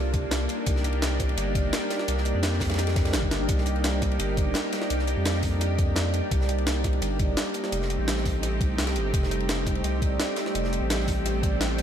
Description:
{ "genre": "liquid drum and bass", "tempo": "170 BPM", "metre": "4/4", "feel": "straight", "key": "unclear", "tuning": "A4 = 440 Hz", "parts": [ { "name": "lush unison pad", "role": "sustained chords", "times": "0.0-11.8 s", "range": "A3 to A4", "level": "-31 LUFS", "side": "equal", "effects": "chorus, sidechain pumping" }, { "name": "vibraphone with medium hard mallets", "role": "arpeggios", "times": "0.0-11.8 s", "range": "G3 to G5", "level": "-32 LUFS", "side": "right 3 dB", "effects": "ping-pong delay" }, { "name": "saturated sub bass", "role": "bass", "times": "0.0-11.8 s", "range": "F1 to F2", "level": "-27 LUFS", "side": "equal", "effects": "none" }, { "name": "electronic kick drum", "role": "drums", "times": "0.1-11.5 s", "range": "none", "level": "-27 LUFS", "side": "equal", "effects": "none" }, { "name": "jungle sampler-style drum kit", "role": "drums", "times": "0.1-11.8 s", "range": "hi-hat, snare drum", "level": "-31 LUFS", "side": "equal", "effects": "none" }, { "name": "modern studio drum kit", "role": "drums", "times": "0.1-11.8 s", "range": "ride cymbal, snare drum", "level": "-36 LUFS", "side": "left 2 dB", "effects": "high-pass filter on cymbals, high-pass filter on snare, high-pass filter on room" } ], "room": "light reverb, small room ambience", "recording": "none", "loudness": "-23 LUFS", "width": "side -9 dB against mid", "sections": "0.0-11.8 A section", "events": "drum fill 3.3", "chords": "0.5 Cm9; 7.7 F9" }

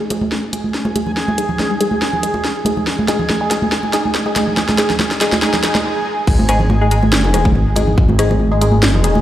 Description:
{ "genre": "deep dubstep", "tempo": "141 BPM", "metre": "4/4", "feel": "swing 54% on 16ths, half-time", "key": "unclear", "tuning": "A4 = 440 Hz", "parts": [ { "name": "filtered dub chord stab", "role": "stabs", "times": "0.0-9.2 s", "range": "G#3 to G#4", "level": "-20 LUFS", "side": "left 1 dB", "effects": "phaser, dub echo" }, { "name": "backwards swelling texture", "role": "texture", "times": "0.4-5.8 s", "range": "G#4", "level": "-24 LUFS", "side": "right 2 dB", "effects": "built-in reverb" }, { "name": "garage drum kit", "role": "drums", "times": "0.1-9.1 s", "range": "crash cymbal, hi-hat, rim click, snare drum", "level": "-20 LUFS", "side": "equal", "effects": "overdrive, high-pass filter on hats, high-pass filter on snare, high-pass filter on cymbals" }, { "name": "congas", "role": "percussion", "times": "0.1-9.2 s", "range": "none", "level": "-20 LUFS", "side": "right 2 dB", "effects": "dub echo" }, { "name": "dark detuned saw bass", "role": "bass", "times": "6.3-9.2 s", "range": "G#1", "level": "-14 LUFS", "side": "equal", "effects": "none" }, { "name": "electronic kick drum", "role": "drums", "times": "6.3-8.1 s", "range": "none", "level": "-13 LUFS", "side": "equal", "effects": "overdrive" } ], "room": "moderate huge ambient reverb, RT60 4.4 s", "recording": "played on a big sound system in a bare room, large studio reverb", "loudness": "-13 LUFS", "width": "side -12 dB against mid", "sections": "0.0-6.3 A section; 6.3-9.2 B section", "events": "build-up 0.0-6.3; drum fill 0.0-5.8; filter sweep on synth stab 0.0-6.3; stop 5.8-6.3; drop 6.3-9.2", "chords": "0.0 G#5" }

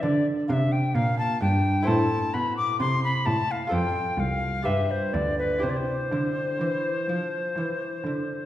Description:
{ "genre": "classical, baroque-style sonata movement with continuo", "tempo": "64 BPM", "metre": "4/4", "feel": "straight", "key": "C major", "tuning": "A4 = 440 Hz", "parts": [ { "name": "alto recorder", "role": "melody", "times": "0.0-8.5 s", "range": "B4 to D6", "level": "-27 LUFS", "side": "left 2 dB", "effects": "none" }, { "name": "lute", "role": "accompaniment", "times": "0.0-8.5 s", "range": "D2 to C5", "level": "-29 LUFS", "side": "right 1 dB", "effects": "none" }, { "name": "rich cello", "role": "bass", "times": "0.0-8.5 s", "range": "C2 to F3", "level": "-27 LUFS", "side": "right 1 dB", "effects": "none" } ], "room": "wet recital hall reverb, RT60 1.6 s", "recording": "heard from further back in the room", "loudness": "-23 LUFS", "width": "side -13 dB against mid", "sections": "0.0-8.5 A section", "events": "none", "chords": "0.0 Bb; 1.9 Am; 3.7 F; 4.7 G7; 5.6 C" }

